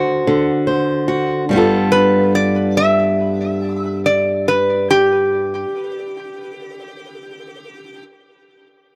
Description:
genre	acoustic country blues, solo or duo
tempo	47 BPM (dotted quarters)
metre	12/8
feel	straight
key	G mixolydian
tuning	A4 = 440 Hz
part	fingerpicked steel-string acoustic guitar	accompaniment	0.0-5.7 s	G2 to C5	-19 LUFS	equal	none
part	metal-body resonator slide guitar	melody	1.9-8.0 s	G4 to E5	-19 LUFS	equal	tape echo
room	light reverb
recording	dry, close 1970s-style studio recording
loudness	-16 LUFS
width	mono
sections	0.0-1.5 A section; 1.5-6.6 B section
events	slowing down 0.0-1.5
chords	0.0 D7; 1.5 G9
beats	0.26 | 1.49 2.75 4.02 5.29

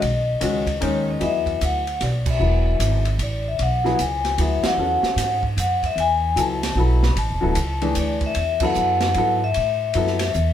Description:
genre	modal jazz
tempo	151 BPM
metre	3/4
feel	swing 65% on 8ths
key	E mixolydian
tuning	A4 = 436 Hz
part	vibraphone with medium mallets	melody	0.0-10.5 s	C#5 to B5	-23 LUFS	left 3 dB	none
part	upright bass	bass	0.0-10.5 s	D1 to A2	-23 LUFS	right 1 dB	none
part	open jazz drum kit	drums	0.0-10.5 s	crash cymbal, hi-hat, kick drum, ride cymbal, snare drum	-28 LUFS	right 2 dB	none
part	warm baby grand piano	accompaniment	0.4-10.2 s	D#3 to A4	-25 LUFS	left 2 dB	none
room	moderate stone room reverb, RT60 0.9 s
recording	band playing live in one room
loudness	-18 LUFS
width	side -10 dB against mid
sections	0.0-1.2 A section; 1.2-10.5 B section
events	band accent 2.2, 4.6, 8.6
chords	0.0 B69; 1.2 E9; 6.0 Dsus2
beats	| 0.01 0.41 0.81 | 1.20 1.60 2.00 | 2.40 2.79 3.19 | 3.59 3.98 4.38 | 4.78 5.17 5.57 | 5.97 6.37 6.76 | 7.16 7.56 7.95 | 8.35 8.75 9.15 | 9.54 9.94 10.34

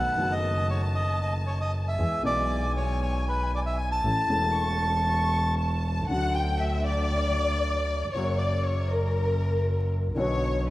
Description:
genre	tango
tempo	117 BPM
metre	4/4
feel	rubato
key	A major, D major from 6.1 s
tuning	A4 = 440 Hz
part	bandoneon	melody	0.0-5.5 s	B4 to A5	-28 LUFS	equal	none
part	rich studio violin section	second line	0.0-10.7 s	A#4 to C#6	-31 LUFS	left 2 dB	none
part	clear upright piano	accompaniment	0.0-10.7 s	E1 to A4	-33 LUFS	left 1 dB	none
part	clear double bass	bass	0.0-10.7 s	E1 to E2	-27 LUFS	equal	none
room	moderate lush hall reverb, RT60 2.6 s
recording	rough home demo mix, vinyl crackle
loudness	-24 LUFS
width	side -17 dB against mid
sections	0.0-6.1 A section; 6.1-10.7 B section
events	violin section solo 6.1-10.7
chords	0.0 B7; 2.0 E; 4.0 A; 6.1 D; 8.1 F#; 10.2 Bm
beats	0.44 0.95 1.47 | 1.98 2.49 3.00 3.52 | 4.03 4.55 5.06 5.58 | 6.10 6.61 7.12 7.63 | 8.14 8.65 9.16 9.67 | 10.18 10.68

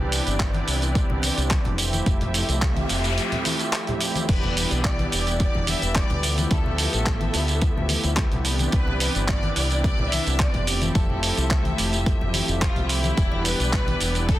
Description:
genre	nu-disco, nu disco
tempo	108 BPM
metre	4/4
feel	straight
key	unclear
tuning	A4 = 441 Hz
part	warm analog pad	accompaniment	0.0-14.4 s	E3 to G4	-29 LUFS	right 2 dB	chorus, tremolo, slapback echo
part	warm studio string section	sustained chords	0.0-14.4 s	F3 to E5	-32 LUFS	left 1 dB	sidechain pumping
part	fingered electric bass with an envelope filter	bass	0.0-14.4 s	E1 to D2	-26 LUFS	equal	none
part	dusty soul sampler-style drum kit	drums	0.1-14.4 s	crash cymbal, handclaps, hi-hat, tambourine	-26 LUFS	right 1 dB	none
part	electronic kick drum	drums	0.4-14.4 s	none	-23 LUFS	equal	overdrive
part	congas	percussion	0.5-14.0 s	none	-32 LUFS	left 3 dB	none
part	noise sweep	sound effects	2.4-4.3 s	none	-32 LUFS	equal	none
part	clear studio violin section	melody	4.3-14.4 s	E4 to E5	-30 LUFS	left 1 dB	tape echo
room	little or no reverb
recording	dense, heavily limited modern master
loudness	-20 LUFS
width	side -14 dB against mid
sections	0.0-14.4 A section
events	noise sweep 2.4-4.3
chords	0.0 Cmaj9; 1.8 Fmaj9; 4.3 Em7; 6.2 G13; 8.5 Cmaj9; 10.7 Fmaj9; 13.2 Em7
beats	0.40 0.95 1.51 | 2.06 2.62 3.17 3.73 | 4.29 4.84 5.40 5.95 | 6.51 7.06 7.62 8.18 | 8.73 9.29 9.84 10.40 | 10.95 11.51 12.06 12.62 | 13.18 13.73 14.29

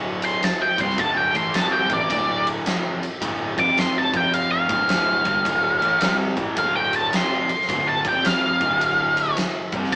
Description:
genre	blues rock power trio and southern rock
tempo	107 BPM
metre	4/4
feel	swing 65% on 8ths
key	D minor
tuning	A4 = 441 Hz
part	overdriven semi-hollow guitar	riff	0.0-10.0 s	D2 to C4	-25 LUFS	equal	none
part	fuzz picked electric bass	bass	0.0-10.0 s	D1 to C2	-31 LUFS	equal	overdrive
part	octave-fuzz lead guitar	melody	0.2-10.0 s	D5 to D6	-20 LUFS	equal	distortion
part	huge arena drum kit	drums	0.2-10.0 s	kick drum, ride cymbal, snare drum	-25 LUFS	equal	none
room	moderate stone room reverb, RT60 1.0 s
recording	band playing live in one room, small speaker sound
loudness	-18 LUFS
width	side -32 dB against mid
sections	0.0-10.0 A section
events	lead electric guitar solo 0.0-10.0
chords	0.0 Dm; 3.5 F5; 4.6 Dm; 8.0 F5; 8.5 Dm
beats	0.44 | 0.99 1.55 2.11 2.67 | 3.22 3.78 4.34 4.90 | 5.46 6.01 6.57 7.13 | 7.69 8.25 8.81 9.37 | 9.93

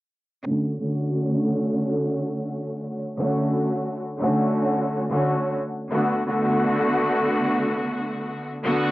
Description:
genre	hip hop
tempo	88 BPM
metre	4/4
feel	swing 58% on 16ths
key	D major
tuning	A4 = 439 Hz
part	clear studio string section	accompaniment	0.5-8.9 s	D3 to F#4	-21 LUFS	equal	cassette tape, high-pass filter, low-pass filter
room	little or no reverb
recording	dry, gritty hardware recording, cassette tape, nothing above 10.3 kHz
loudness	-21 LUFS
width	side -17 dB against mid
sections	0.5-8.9 A section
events	filter sweep on string section 0.5-8.9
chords	0.5 Dmaj7; 5.9 Bm7/D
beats	| 0.46 1.14 1.82 2.50 | 3.19 3.87 4.55 5.23 | 5.91 6.59 7.28 7.96 | 8.64

